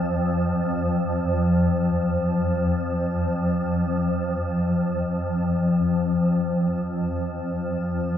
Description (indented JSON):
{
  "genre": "world meditative, free-time meditation music",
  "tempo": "free time",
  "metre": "none",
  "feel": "none",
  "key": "unclear",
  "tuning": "A4 = 440 Hz",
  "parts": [
    { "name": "swarming drone", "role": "solo", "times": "0.0-8.2 s", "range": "F2 to F3", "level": "-21 LUFS", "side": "left 1 dB", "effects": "built-in reverb" }
  ],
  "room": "wet church reverb, RT60 3.4 s",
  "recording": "dark, warm production",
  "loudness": "-21 LUFS",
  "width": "side -10 dB against mid",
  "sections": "0.0-5.2 A section; 5.2-8.2 A section",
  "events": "none",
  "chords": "none",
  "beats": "free time"
}